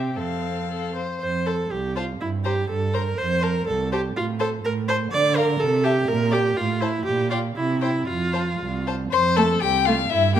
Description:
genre	quick classical-period movement for string quartet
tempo	112-126 BPM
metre	2/4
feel	rubato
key	F major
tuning	A4 = 440 Hz
part	rich violin	second line	0.0-10.4 s	E4 to F5	-27 LUFS	left 4 dB	none
part	clear viola	accompaniment	0.0-10.4 s	A3 to D5	-24 LUFS	right 2 dB	none
part	warm cello	bass	0.0-10.4 s	C2 to D3	-25 LUFS	right 4 dB	none
part	rich violin	melody	0.2-10.4 s	E5 to C6	-27 LUFS	left 11 dB	none
room	moderate recital hall reverb, RT60 1.6 s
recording	none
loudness	-20 LUFS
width	side -10 dB against mid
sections	0.0-1.2 A section; 1.2-9.1 B section; 9.1-10.4 B section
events	none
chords	0.2 F; 2.2 N.C.; 3.2 F; 4.2 N.C.; 5.1 Bb/D; 5.6 Am/C; 6.1 Gm/Bb; 6.6 F/A; 7.1 Gm7/Bb; 7.6 C; 8.1 F5; 9.1 F

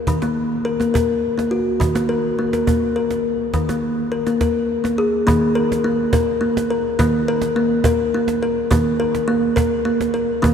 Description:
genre	world meditative, meditative tuned percussion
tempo	104 BPM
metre	3/4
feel	straight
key	Eb minor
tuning	A4 = 440 Hz
part	kalimba	arpeggios	0.1-10.5 s	Eb3 to Bb4	-17 LUFS	left 1 dB	none
part	cajon	percussion	0.1-10.5 s	none	-24 LUFS	right 2 dB	none
room	wet cathedral reverb, RT60 5.9 s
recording	dreamy mix soaked in reverb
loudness	-17 LUFS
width	side -7 dB against mid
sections	0.0-5.3 A section; 5.3-10.5 B section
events	none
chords	0.0 Ebm; 1.8 Eb5

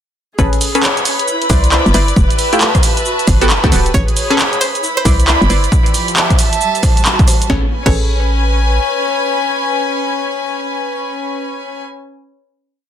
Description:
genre	UK garage, two-step garage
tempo	135 BPM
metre	4/4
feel	swing 63% on 16ths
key	A major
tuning	A4 = 440 Hz
part	soft string machine	sustained chords	0.7-5.7 s	B4	-24 LUFS	right 1 dB	ensemble chorus, sidechain pumping
part	punchy chord stab	stabs	0.4-12.3 s	A3 to D5	-18 LUFS	equal	chorus, tape echo
part	hollow knocking FM bass	bass	0.4-8.8 s	D1 to D2	-14 LUFS	equal	sidechain pumping
part	electronic kick drum	drums	0.4-8.0 s	none	-14 LUFS	equal	none
part	punchy analog drum machine	drums	0.4-8.0 s	crash cymbal, handclaps, hi-hat, rim click, shaker, snare drum	-17 LUFS	right 1 dB	none
part	rich chamber string section	texture	0.4-11.8 s	F3 to B5	-18 LUFS	left 1 dB	sidechain pumping
part	string-like resonator pluck	melody	3.9-12.3 s	C5 to C#5	-22 LUFS	right 1 dB	chorus, tape echo
room	light reverb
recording	dense, heavily limited modern master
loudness	-11 LUFS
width	side -9 dB against mid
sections	0.4-7.5 drop; 7.5-11.1 final chord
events	drop 0.4-7.5; band accent 7.1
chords	0.4 Amaj9; 1.3 Cmaj9; 2.2 Fmaj9; 3.1 Gmaj9; 3.9 Amaj9; 4.8 Cmaj9; 5.7 Fmaj9; 6.6 Gmaj9; 7.5 Amaj9

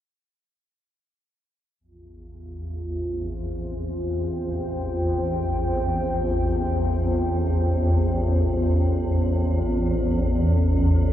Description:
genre	dark ambient drone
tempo	free time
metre	none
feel	none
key	unclear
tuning	A4 = 440 Hz
part	deep dark ambient pad	sustained chords	2.8-11.1 s	C#4 to G5	-28 LUFS	left 1 dB	chorus, built-in reverb
part	swarming drone	drone	2.5-11.1 s	A1 to E2	-22 LUFS	equal	built-in reverb
room	wet huge ambient reverb, RT60 8.0 s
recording	dark, warm production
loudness	-21 LUFS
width	side -11 dB against mid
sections	1.8-11.1 A section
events	none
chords	1.8 F5; 9.7 C#m

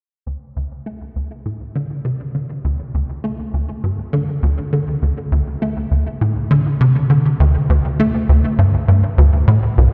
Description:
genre	ambient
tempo	101 BPM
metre	4/4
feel	straight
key	unclear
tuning	A4 = 442 Hz
part	tight sequencer bass	riff	0.3-9.9 s	C2 to A3	-17 LUFS	equal	ensemble chorus, tape echo
room	wet cathedral reverb, RT60 5.1 s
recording	in a vast, echoing space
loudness	-17 LUFS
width	mono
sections	0.3-9.9 A section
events	fade-in on analog synth bass 0.3-9.9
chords	none

